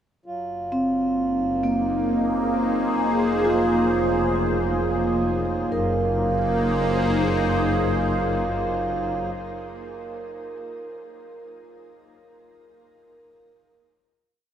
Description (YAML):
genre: ambient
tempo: 66 BPM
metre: 3/4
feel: straight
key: Gb lydian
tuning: A4 = 440 Hz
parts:
  - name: dark symphonic double bass section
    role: bass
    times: 0.3-9.2 s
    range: F1 to Gb1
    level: -29 LUFS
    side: left 1 dB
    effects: none
  - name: pedal harmonium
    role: drone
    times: 0.3-9.3 s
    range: Gb3 to F4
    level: -29 LUFS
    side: right 2 dB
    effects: none
  - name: evolving wavetable pad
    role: sustained chords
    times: 1.3-9.2 s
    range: Bb3 to C5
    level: -25 LUFS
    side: left 1 dB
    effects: phaser, built-in reverb, shimmer reverb
  - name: vibraphone with soft mallets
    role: arpeggios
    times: 0.7-11.0 s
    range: Bb3 to Bb4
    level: -26 LUFS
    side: right 2 dB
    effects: tape echo
room: wet huge ambient reverb, RT60 7.6 s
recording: none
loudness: -20 LUFS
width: side -9 dB against mid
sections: 0.3-5.7 A section; 5.7-8.4 final chord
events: fade-in on double bass section 0.3-5.7; filter sweep on ambient pad 0.3-5.7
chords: 0.3 Gbmaj7; 3.0 Bb5/F; 5.7 Gbmaj7